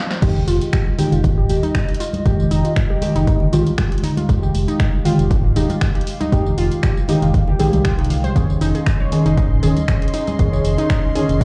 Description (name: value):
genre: deep house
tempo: 118 BPM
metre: 4/4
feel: swing 54% on 16ths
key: F minor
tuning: A4 = 440 Hz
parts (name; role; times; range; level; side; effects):
- warbly dusty pluck; arpeggios; 0.0-11.4 s; Eb4 to F5; -28 LUFS; equal; chorus, phaser, sidechain pumping, analog delay
- deep house drum kit; drums; 0.1-11.4 s; crash cymbal, finger snaps, hi-hat, snare drum, tambourine; -32 LUFS; equal; vintage 12-bit sampler grit
- warbly tape-like pad; sustained chords; 0.7-11.4 s; Ab3 to F5; -30 LUFS; equal; chorus, built-in reverb, sidechain pumping
- deep mellow chord stab; stabs; 0.2-11.4 s; Eb3 to Ab4; -23 LUFS; equal; chorus, phaser, sidechain pumping, analog delay
- organ-like FM bass; bass; 0.2-11.4 s; Eb1 to C2; -21 LUFS; equal; sidechain pumping
- electronic kick drum; drums; 0.2-11.4 s; none; -20 LUFS; equal; overdrive, vintage 12-bit sampler grit
- congas; percussion; 0.9-11.3 s; none; -29 LUFS; equal; none
- analog string pad; texture; 8.5-11.4 s; C6; -39 LUFS; equal; ensemble chorus, sidechain pumping
room: light reverb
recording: played on a big sound system in a bare room, large studio reverb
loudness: -17 LUFS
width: mono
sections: 0.2-11.4 A section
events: break 0.0; drum fill 0.0; drop 0.2-11.4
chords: 0.2 Fm9; 8.4 Dbsus2